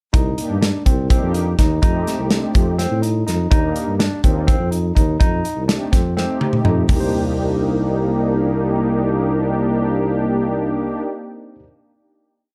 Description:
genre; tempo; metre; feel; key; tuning
progressive instrumental, band music in an uneven meter; 249 BPM (eighths); 7/8; straight; C dorian; A4 = 440 Hz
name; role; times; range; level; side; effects
barky tine electric piano; arpeggios; 0.1-11.7 s; C4 to C5; -28 LUFS; equal; none
mellow tuba; bass; 0.1-11.0 s; C2 to A2; -23 LUFS; equal; none
modern studio drum kit; drums; 0.1-7.0 s; hi-hat, kick drum, snare drum, toms; -20 LUFS; equal; none
warm analog pad; accompaniment; 0.4-11.0 s; A3 to G4; -25 LUFS; equal; chorus
room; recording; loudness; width
light reverb; dark, warm production; -18 LUFS; mono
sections
0.1-6.9 A section; 6.9-10.3 final chord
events
drum fill 6.2-6.9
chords
0.1 Cm7; 1.8 F7; 3.5 Cm7/Eb; 5.2 F7; 6.9 Cm7

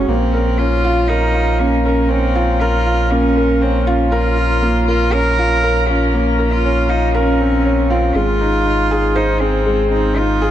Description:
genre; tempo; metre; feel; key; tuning
piano and strings electronica; 119 BPM; 4/4; straight; Bb minor; A4 = 440 Hz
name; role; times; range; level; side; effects
rich cello; melody; 0.0-10.5 s; C4 to Bb4; -18 LUFS; equal; shimmer reverb, digital delay
felt-muted upright piano; riff; 0.0-10.5 s; Ab3 to Db5; -18 LUFS; equal; shimmer reverb, digital delay
warm sub bass; bass; 0.0-10.5 s; Ab1 to Bb1; -18 LUFS; equal; none
room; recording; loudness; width
moderate huge ambient reverb, RT60 8.5 s; dark, warm production; -13 LUFS; side -11 dB against mid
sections
0.0-10.5 A section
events
none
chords
0.1 Bbm; 8.2 Ab

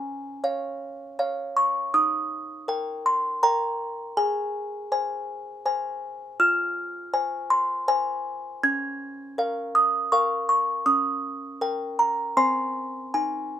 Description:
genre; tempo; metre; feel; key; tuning
classical, lullaby for music box; 80 BPM; 3/4; straight; Ab major; A4 = 440 Hz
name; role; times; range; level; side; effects
music box; solo; 0.0-13.6 s; C4 to Ab6; -23 LUFS; equal; none
room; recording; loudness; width
light reverb; minimal, uncompressed stereo recording; -23 LUFS; side -10 dB against mid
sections
0.0-13.6 A section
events
none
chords
0.0 Db; 1.9 Eb; 4.2 Ab; 6.4 Fm; 8.6 Bbm7/Db; 10.9 Eb7/Db; 12.4 Ab/C

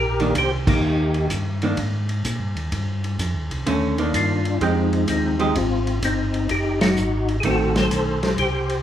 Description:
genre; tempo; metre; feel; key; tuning
soul jazz organ trio; 127 BPM; 4/4; swing 67% on 8ths; C minor; A4 = 440 Hz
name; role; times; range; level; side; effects
percussive tonewheel organ; melody; 0.0-1.3, 4.2-8.8 s; C4 to C5; -23 LUFS; left 2 dB; slow rotary speaker, chorus vibrato
mellow tonewheel organ; bass; 0.0-8.8 s; F#1 to Bb2; -24 LUFS; equal; chorus vibrato, slow rotary speaker
vintage hollow-body jazz guitar; accompaniment; 0.2-8.2 s; D3 to G4; -23 LUFS; right 2 dB; none
vintage drum kit; drums; 0.2-8.8 s; crash cymbal, hi-hat, kick drum, ride cymbal, snare drum; -27 LUFS; equal; none
room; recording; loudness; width
moderate large studio reverb, RT60 1.4 s; band playing live in one room; -19 LUFS; side -10 dB against mid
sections
0.0-8.8 A section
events
band accent 0.6, 6.7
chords
0.0 Cm9; 4.6 Fm9; 6.5 F#dim7

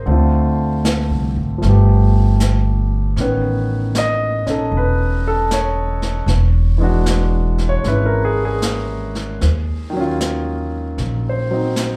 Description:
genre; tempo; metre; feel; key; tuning
jazz ballad; 77 BPM; 4/4; swing 66% on 8ths; unclear; A4 = 440 Hz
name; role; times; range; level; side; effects
warm concert grand piano; accompaniment; 0.0-12.0 s; D3 to Eb5; -22 LUFS; equal; slapback echo
upright bass; bass; 0.0-12.0 s; E1 to Eb2; -19 LUFS; equal; none
jazz brush drum kit; drums; 0.1-12.0 s; brushed snare drum, hi-hat, snare drum; -27 LUFS; equal; slapback echo
room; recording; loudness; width
light reverb; live gig heard through the venue's PA, club reverb; -17 LUFS; mono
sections
0.0-12.0 A section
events
none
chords
0.1 Dm7; 1.6 G9; 3.2 Aadd9; 6.3 E9; 9.4 Ebm9

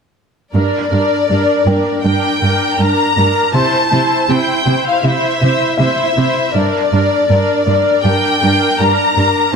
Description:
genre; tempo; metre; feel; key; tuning
cinematic; 80 BPM; 4/4; straight; G dorian; A4 = 440 Hz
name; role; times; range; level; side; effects
warm symphonic violin section; melody; 0.5-9.6 s; D5 to Bb5; -15 LUFS; left 4 dB; none
rich symphonic viola section; accompaniment; 0.5-9.5 s; D4 to C5; -17 LUFS; right 1 dB; none
warm symphonic cello section; bass; 0.5-9.2 s; G2 to C3; -17 LUFS; right 2 dB; none
warm grand piano; texture; 1.7-9.6 s; Bb4 to C6; -26 LUFS; left 2 dB; none
room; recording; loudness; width
moderate scoring stage reverb, RT60 1.6 s; none; -11 LUFS; side -6 dB against mid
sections
0.5-9.6 A section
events
none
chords
0.5 Gm; 3.5 C; 6.5 Gm

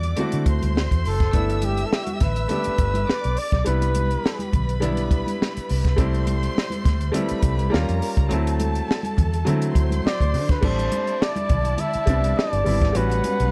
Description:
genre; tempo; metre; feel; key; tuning
lush 1970s-style soul; 103 BPM; 4/4; swing 54% on 16ths; unclear; A4 = 440 Hz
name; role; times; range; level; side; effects
warm studio violin section; second line; 0.0-13.5 s; C#4 to E6; -34 LUFS; equal; none
bright grand piano; accompaniment; 0.0-13.5 s; F#3 to G4; -30 LUFS; equal; none
vintage muted fingered electric bass; bass; 0.0-13.5 s; F#1 to D3; -26 LUFS; equal; none
compact cocktail drum kit; drums; 0.0-13.5 s; crash cymbal, hi-hat, kick drum, snare drum; -25 LUFS; equal; none
congas; percussion; 0.2-13.4 s; none; -34 LUFS; equal; none
warm flugelhorn; melody; 1.1-4.5, 10.1-13.5 s; F#4 to E5; -28 LUFS; equal; none
room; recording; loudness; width
little or no reverb; dry, close 1970s-style studio recording; -22 LUFS; mono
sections
0.0-10.6 A section; 10.6-13.5 B section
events
none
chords
0.0 D9; 1.3 G69; 3.7 Cmaj7; 6.0 Cmaj13; 7.7 Eb9; 8.3 D9; 10.6 Am11; 13.0 A13

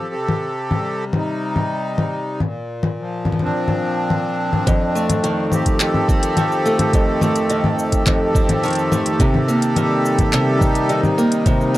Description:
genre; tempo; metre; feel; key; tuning
folktronica; 106 BPM; 4/4; straight; F mixolydian; A4 = 443 Hz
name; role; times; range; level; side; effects
accordion; sustained chords; 0.0-11.8 s; Bb2 to A4; -21 LUFS; equal; none
organic electronic drum kit; drums; 0.3-11.8 s; congas, handclaps, hi-hat, shaker; -21 LUFS; left 2 dB; none
picked old ladder-braced acoustic guitar; arpeggios; 4.7-11.8 s; F2 to C4; -18 LUFS; right 1 dB; tape echo
electronic kick drum; drums; 4.7-11.6 s; none; -18 LUFS; equal; none
room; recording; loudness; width
little or no reverb; dry, close 1970s-style studio recording; -16 LUFS; side -16 dB against mid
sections
0.0-4.7 A section; 4.7-11.8 B section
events
filter sweep on drum 0.0-4.7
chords
0.1 Cm; 2.4 Bb; 4.7 F7; 9.2 Cm7

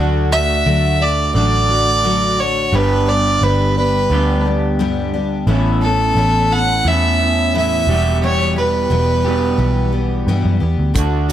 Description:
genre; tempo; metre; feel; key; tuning
folk rock and heartland rock; 87 BPM; 4/4; straight; unclear; A4 = 440 Hz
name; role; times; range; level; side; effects
picked twelve-string acoustic guitar; accompaniment; 0.0-11.3 s; E2 to G4; -22 LUFS; left 6 dB; none
electric guitar through a small old amp; riff; 0.0-11.3 s; E2 to G4; -21 LUFS; right 2 dB; none
vintage muted picked electric bass; bass; 0.0-11.3 s; E1 to G2; -18 LUFS; equal; none
rich fiddle; melody; 0.3-11.3 s; A4 to F#5; -17 LUFS; right 1 dB; none
damped 70s drum kit; drums; 11.0-11.3 s; hi-hat, kick drum; -18 LUFS; right 1 dB; none
room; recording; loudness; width
small room ambience; none; -13 LUFS; side -11 dB against mid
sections
0.0-11.3 A section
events
none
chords
0.0 D; 2.7 G; 5.5 Aadd9; 7.9 Em

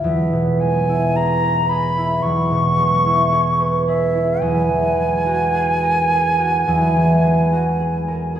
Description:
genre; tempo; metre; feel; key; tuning
classical, impressionist duo for flute and harp; 54 BPM; 4/4; rubato; E lydian; A4 = 440 Hz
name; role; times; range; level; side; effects
concert flute; melody; 0.0-8.4 s; E5 to C#6; -19 LUFS; equal; none
concert harp; accompaniment; 0.0-8.4 s; E2 to B4; -17 LUFS; right 1 dB; none
room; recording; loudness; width
wet recital hall reverb, RT60 1.8 s; heard from further back in the room, lossy compression artefacts; -15 LUFS; side -10 dB against mid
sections
0.0-8.4 A section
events
none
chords
0.0 E6; 4.4 F#9/E

